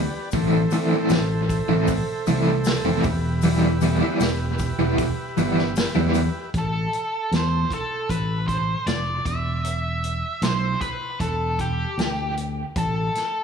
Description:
psychedelic rock; 77 BPM; 4/4; straight; A minor; A4 = 441 Hz
combo organ; sustained chords; 0.0-6.5 s; G4 to E5; -30 LUFS; right 3 dB
fingered electric bass; bass; 0.0-13.1 s; E1 to E2; -24 LUFS; equal
crunchy overdriven guitar; riff; 0.3-6.2 s; E3 to E4; -21 LUFS; equal; tremolo
vintage drum kit; drums; 0.3-13.3 s; hi-hat, kick drum, snare drum; -29 LUFS; equal; analog delay
tube shaker; percussion; 0.3-6.3 s; -41 LUFS; left 9 dB; analog delay
octave-fuzz lead guitar; melody; 6.6-13.4 s; G4 to E5; -26 LUFS; right 1 dB; wah, distortion, analog delay
little or no reverb; echo-heavy mix, studio ambience; -20 LUFS; side -6 dB against mid
0.0-6.5 A section; 6.5-13.4 B section
0.3 Am; 3.0 Em; 6.5 A5; 9.3 Em; 12.8 A5

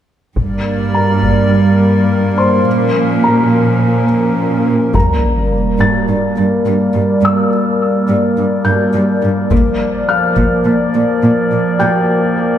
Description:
cinematic, hybrid orchestral and electronic film score; 105 BPM; 4/4; straight; G dorian; A4 = 440 Hz
hollow soft pad; sustained chords; 0.4-12.6 s; F3 to D5; -14 LUFS; equal; chorus, low-pass filter
rich symphonic cello section; bass; 0.4-11.9 s; G2 to Bb2; -16 LUFS; right 1 dB
taiko ensemble; drums; 0.4-1.5, 4.9-6.0, 9.5-10.6 s; -18 LUFS; equal
felt-muted upright piano; texture; 0.9-12.6 s; Bb4 to A6; -20 LUFS; left 2 dB; digital delay
sub drop; sound effects; 4.9-7.2 s; -18 LUFS; left 1 dB
wet scoring stage reverb, RT60 2.0 s; -11 LUFS; side -10 dB against mid
0.4-4.9 A section; 4.9-12.6 B section
build-up 4.9-12.6; impact 4.9-7.2; filter sweep on analog synth pad 4.9-12.6
0.4 Gm; 2.7 Bbm; 4.9 Gm; 9.5 Bb

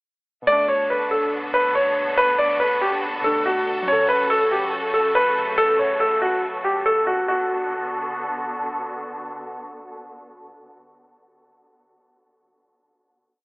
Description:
hip hop, drill; 141 BPM; 4/4; half-time; B minor; A4 = 439 Hz
warbly lo-fi synth keys; accompaniment; 0.4-7.3 s; B2 to A4; -32 LUFS; equal; chorus, low-pass filter
clear upright piano; melody; 0.5-8.5 s; F#4 to D5; -19 LUFS; equal; low-pass filter, tape echo
clear symphonic string section; sustained chords; 0.5-10.7 s; C#3 to A4; -28 LUFS; equal
moderate huge ambient reverb, RT60 8.4 s; worn, warbling old tape, cassette tape, warbly pitch drift, low-pass filter, telephone sound; -18 LUFS; side -40 dB against mid
0.5-7.3 breakdown; 7.3-10.7 final chord
0.5 Bm7; 3.9 F#m; 7.3 Bm7

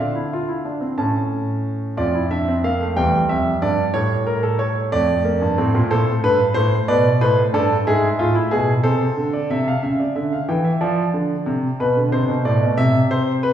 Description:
classical, baroque-style 3-part fugue for grand piano; 61 BPM (dotted quarters); 6/8; straight; D minor; A4 = 441 Hz
warm concert grand piano; solo; 0.0-13.5 s; E2 to A5; -17 LUFS; equal
wet recital hall reverb, RT60 1.3 s; recorded in a church or concert hall, small room ambience; -17 LUFS; side -10 dB against mid
0.0-2.0 A section; 2.0-9.8 B section; 9.8-13.5 A section
0.0 Dm; 1.0 A; 2.0 Dm/F; 3.0 Em7; 3.9 A7; 4.9 Dm/F; 5.9 Am; 6.9 Gadd9; 7.9 E/G#; 8.8 Am/C; 9.8 C#dim; 10.8 Dm; 11.8 Amadd9; 12.8 C

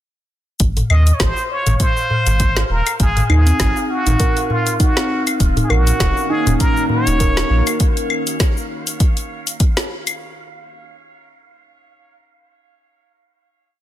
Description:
organic downtempo; 100 BPM; 4/4; swing 56% on 16ths; Eb dorian; A4 = 440 Hz
warm sub bass; bass; 0.6-7.6 s; Eb1 to Eb2; -16 LUFS; equal
deep house drum kit; drums; 0.6-10.2 s; claves, hi-hat, shaker, snare drum; -22 LUFS; left 2 dB; soft clipping on snare
electronic kick drum; drums; 0.6-9.7 s; -17 LUFS; equal
wind-like tuned noise texture; texture; 1.3-10.2 s; F5; -32 LUFS; right 3 dB; built-in reverb
darbuka; percussion; 0.8-7.8 s; -23 LUFS; left 1 dB
trumpet with plunger mute; melody; 0.9-7.8 s; F4 to Eb5; -22 LUFS; equal; digital delay
steel tongue drum; arpeggios; 3.3-7.4 s; C4 to Bb4; -22 LUFS; right 1 dB; ping-pong delay
bowed-like drone; sustained chords; 5.9-7.8 s; Eb3 to Gb4; -26 LUFS; equal; built-in reverb, vintage 12-bit sampler grit, sidechain pumping
light reverb, digital ambience; dense, heavily limited modern master; -14 LUFS; side -12 dB against mid
0.6-10.2 groove
0.6 Ab13; 5.4 Ebm7

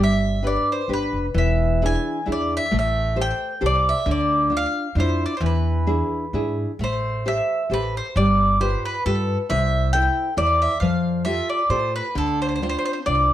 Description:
italian folk, Italian serenade; 133 BPM; 3/4; swing 55% on 8ths, rubato; A minor; A4 = 439 Hz
bowl-back mandolin; melody; 0.0-13.3 s; A4 to G#5; -22 LUFS; equal; slapback echo, plate reverb
nylon-string guitar; accompaniment; 0.0-13.3 s; C3 to C5; -24 LUFS; left 1 dB
upright bass; bass; 0.0-13.3 s; E1 to A2; -24 LUFS; equal
light reverb; -19 LUFS; side -12 dB against mid
0.0-13.3 A section
0.0 G; 1.4 E7; 2.7 Am7; 4.1 Dmadd9; 5.4 E7; 6.8 Am7; 8.2 G7; 9.5 C6; 10.8 Fadd9; 12.2 Dm7

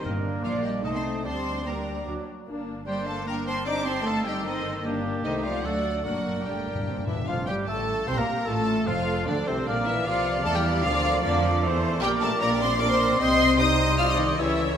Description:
quick classical-period movement for symphony orchestra; 151 BPM; 3/4; straight; G minor; A4 = 440 Hz
clear studio violin section; melody; 0.0-14.8 s; C5 to F6; -31 LUFS; left 2 dB
clear studio violin section; second line; 0.0-14.8 s; C4 to F5; -32 LUFS; left 1 dB
silver concert flute; second line; 0.0-14.8 s; C5 to F6; -33 LUFS; equal
warm oboe; second line; 0.0-14.8 s; C4 to Eb5; -34 LUFS; right 1 dB
rich studio viola section; accompaniment; 0.0-14.8 s; F#3 to Eb5; -32 LUFS; right 1 dB
mellow French horn section; sustained chords; 0.0-14.8 s; C3 to F4; -30 LUFS; left 3 dB
clear studio cello section; bass; 0.0-14.8 s; C2 to D4; -32 LUFS; right 2 dB
rich studio double bass section; bass; 0.0-14.8 s; F1 to F2; -32 LUFS; right 2 dB
timpani; percussion; 0.1-0.6, 6.0-7.3, 10.9-11.4 s; G2 to D3; -36 LUFS; left 1 dB
warm bassoon; accompaniment; 7.3-14.8 s; C3 to C4; -32 LUFS; right 1 dB
wet scoring stage reverb, RT60 1.6 s; -23 LUFS; side -8 dB against mid
0.0-7.3 A section; 7.3-14.8 B section
timpani fill 6.1-7.3
0.0 Gm; 0.8 Adim/C; 1.2 Gm/D; 2.1 D; 2.5 Gm; 3.7 Cm/G; 4.8 Gm; 5.2 Adim/C; 5.6 D; 6.1 Gm; 7.3 Gm11/F; 8.5 Dm; 9.7 Bb; 10.8 Bb/D; 12.0 Gm/Bb; 13.2 Cm

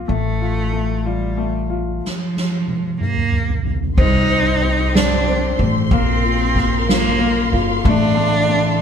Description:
six-eight pop ballad; 62 BPM (dotted quarters); 6/8; straight; C dorian; A4 = 440 Hz
clear concert grand piano; accompaniment; 0.0-8.8 s; A3 to F4; -23 LUFS; left 6 dB
upright bass; bass; 0.0-8.8 s; G1 to C2; -20 LUFS; equal
rich cello; melody; 0.1-8.8 s; F3 to Eb4; -21 LUFS; right 2 dB
soft-mallet drum kit; drums; 2.0-8.7 s; crash cymbal, kick drum, ride cymbal, snare drum, toms; -20 LUFS; right 1 dB
dark studio string section; sustained chords; 4.0-8.8 s; G4 to C6; -25 LUFS; left 1 dB
light reverb; band playing live in one room; -15 LUFS; side -7 dB against mid
0.0-4.0 A section; 4.0-8.8 B section
drum fill 2.0-4.0
0.1 F/A; 2.0 N.C.; 4.0 Cm; 5.9 Bbsus2; 7.9 F/A

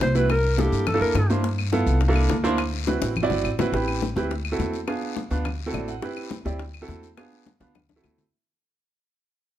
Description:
Afro-Cuban jazz; 209 BPM; 4/4; straight; A4 = 441 Hz
breathy alto saxophone; melody; 0.0-1.3 s; G4 to C5; -25 LUFS; equal
warm upright piano; accompaniment; 0.0-8.2 s; Bb3 to F#5; -26 LUFS; right 3 dB
upright bass; bass; 0.0-8.3 s; G1 to G2; -25 LUFS; equal
bongos; percussion; 0.0-8.2 s; -32 LUFS; left 6 dB
congas; percussion; 0.0-8.3 s; -33 LUFS; left 4 dB
guiro; percussion; 0.0-8.3 s; -40 LUFS; left 10 dB
claves; percussion; 0.3-8.2 s; -36 LUFS; left 8 dB
light reverb; -21 LUFS; side -12 dB against mid
0.0-3.7 A section; 3.7-8.3 B section
drum fill 2.9-3.7, 7.6-8.3; fade-out 3.7-8.3; upright piano fill 5.6-6.0
0.3 C13; 1.4 G13; 2.0 C13; 2.6 D13; 3.7 Am9; 4.3 D9; 4.9 Ddim7; 5.5 D9; 6.0 D13sus4; 6.6 D9; 7.2 Ddim7; 7.7 D9

